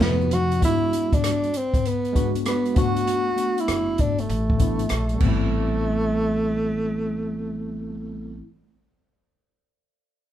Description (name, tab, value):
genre	hip hop, jazz-hop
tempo	98 BPM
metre	4/4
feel	swing 65% on 16ths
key	A dorian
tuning	A4 = 440 Hz
part	breathy tenor saxophone	melody	0.0-8.4 s	A3 to F#4	-24 LUFS	right 1 dB	none
part	tine electric piano	accompaniment	0.0-8.5 s	C3 to F#4	-29 LUFS	equal	medium stereo tremolo
part	upright bass	bass	0.0-8.4 s	F#1 to F2	-27 LUFS	equal	none
part	open jazz drum kit	drums	0.0-5.4 s	crash cymbal, hi-hat, kick drum, rim click, snare drum	-24 LUFS	left 1 dB	none
part	congas and maracas	percussion	0.0-0.6 s	none	-36 LUFS	left 3 dB	none
room	light reverb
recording	band playing live in one room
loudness	-20 LUFS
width	side -11 dB against mid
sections	0.6-5.5 A section; 5.5-8.0 B section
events	break 0.0-0.6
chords	0.0 B7b9; 0.6 G#m7b5; 2.8 Bm7; 5.2 Am7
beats	0.01 | 0.62 1.23 1.84 2.46 | 3.07 3.68 4.29 4.91 | 5.52 6.13 6.74 7.36